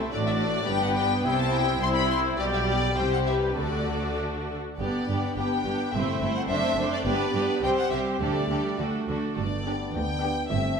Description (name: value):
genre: quick classical-period movement for symphony orchestra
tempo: 96-109 BPM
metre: 2/4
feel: rubato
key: G major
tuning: A4 = 441 Hz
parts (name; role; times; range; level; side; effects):
- rich chamber violin section; melody; 0.0-10.8 s; C5 to C6; -31 LUFS; left 4 dB; none
- rich chamber violin section; second line; 0.0-10.4 s; D4 to D5; -30 LUFS; left 3 dB; none
- rich chamber viola section; accompaniment; 0.0-10.4 s; G3 to G4; -30 LUFS; right 1 dB; none
- rich chamber cello section; bass; 0.0-10.8 s; C2 to D3; -32 LUFS; right 3 dB; none
- rich chamber double bass section; bass; 0.0-10.8 s; F#1 to D2; -33 LUFS; right 3 dB; none
- mellow French horn section; sustained chords; 4.8-10.8 s; A3 to G4; -31 LUFS; equal; none
- timpani; percussion; 5.9-8.8 s; G2 to D3; -37 LUFS; left 1 dB; none
room: wet scoring stage reverb, RT60 1.6 s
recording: none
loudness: -24 LUFS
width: side -6 dB against mid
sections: 0.0-4.8 A section; 4.8-10.8 B section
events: none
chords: 0.1 D/A; 0.7 G; 1.2 C; 2.4 G/B; 3.0 C5; 3.6 D; 4.8 G; 5.9 Am7/G; 6.5 D7; 7.1 G; 7.6 C5; 8.2 Dsus4; 8.8 D; 9.4 G